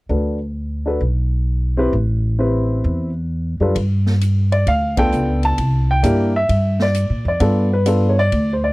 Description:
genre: jazz piano trio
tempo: 131 BPM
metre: 4/4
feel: swing 67% on 8ths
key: G major, G mixolydian from 3.8 s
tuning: A4 = 439 Hz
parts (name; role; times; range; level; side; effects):
- warm upright piano; melody; 0.1-8.7 s; G3 to A5; -19 LUFS; equal; none
- upright bass; bass; 0.1-8.7 s; A1 to Bb2; -18 LUFS; equal; none
- swinging big-band drum kit; drums; 3.8-8.5 s; hi-hat, kick drum, ride cymbal, snare drum; -27 LUFS; equal; none
room: little or no reverb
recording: dry, close 1970s-style studio recording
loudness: -16 LUFS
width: side -21 dB against mid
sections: 0.1-3.8 A section; 3.8-8.7 B section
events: band accent 4.9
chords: 0.1 Gmaj9/D (rootless); 1.9 Am9; 3.8 G9; 5.6 Cadd9; 7.4 G9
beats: | 0.10 0.56 1.01 1.47 | 1.93 2.38 2.84 3.30 | 3.75 4.21 4.67 5.12 | 5.58 6.04 6.49 6.95 | 7.41 7.86 8.32

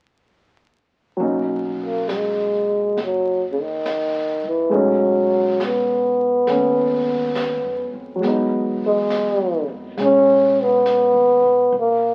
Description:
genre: jazz ballad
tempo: 68 BPM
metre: 4/4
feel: swing 67% on 8ths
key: B major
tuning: A4 = 438 Hz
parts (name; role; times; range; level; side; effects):
- dark baby grand piano; accompaniment; 1.2-11.8 s; F#3 to D#4; -26 LUFS; equal; none
- upright bass; bass; 1.2-12.1 s; F#1 to F#2; -41 LUFS; equal; none
- jazz brush drum kit; drums; 1.2-12.1 s; brushed snare drum, hi-hat, snare drum; -37 LUFS; equal; none
- trombone with cup mute; melody; 1.9-12.1 s; C#3 to C#4; -19 LUFS; equal; none
room: moderate large studio reverb, RT60 1.1 s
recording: very old 78 rpm record, vinyl crackle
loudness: -19 LUFS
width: mono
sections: 1.2-12.1 A section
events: none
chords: 1.2 Bmaj9; 4.7 B13; 8.2 Emaj9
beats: | 1.19 2.08 2.96 3.84 | 4.72 5.59 6.46 7.34 | 8.22 9.09 9.97 10.84 | 11.72

